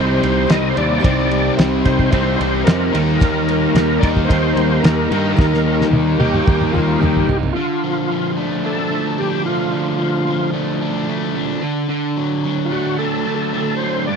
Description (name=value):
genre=classic rock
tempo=110 BPM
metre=4/4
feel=straight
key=unclear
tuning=A4 = 440 Hz
part: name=overdriven tonewheel organ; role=melody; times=0.0-14.2 s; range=F4 to Eb5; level=-22 LUFS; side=equal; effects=slow rotary speaker, chorus vibrato, slapback echo
part: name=honky-tonk upright piano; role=accompaniment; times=0.0-7.4 s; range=Eb4 to C5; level=-30 LUFS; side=right 4 dB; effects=none
part: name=picked steel-string acoustic guitar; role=accompaniment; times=0.0-7.6 s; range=C3 to G4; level=-30 LUFS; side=left 5 dB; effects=none
part: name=phased string machine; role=sustained chords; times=0.0-7.5 s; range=G3 to C5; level=-29 LUFS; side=left 1 dB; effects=none
part: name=distorted electric guitar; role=riff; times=0.0-14.2 s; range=G2 to Eb4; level=-22 LUFS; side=left 13 dB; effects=distortion
part: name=distorted electric guitar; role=riff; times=0.0-7.3 s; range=C3 to Eb4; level=-25 LUFS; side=equal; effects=overdrive
part: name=overdriven electric guitar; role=riff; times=0.0-14.2 s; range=G2 to Eb4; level=-22 LUFS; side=right 14 dB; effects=none
part: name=fuzz picked electric bass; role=bass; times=0.0-7.5 s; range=C2 to G2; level=-20 LUFS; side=equal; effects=overdrive
part: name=cloth-damped thuddy drum kit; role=drums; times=0.2-7.5 s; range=kick drum, ride cymbal, snare drum, toms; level=-17 LUFS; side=equal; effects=none
room=little or no reverb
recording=dry, close 1970s-style studio recording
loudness=-15 LUFS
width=side -6 dB against mid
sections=0.0-7.5 A section; 7.5-14.2 B section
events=drum fill 5.4-7.5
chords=0.0 Cm; 2.9 Eb; 7.5 Dm; 11.6 D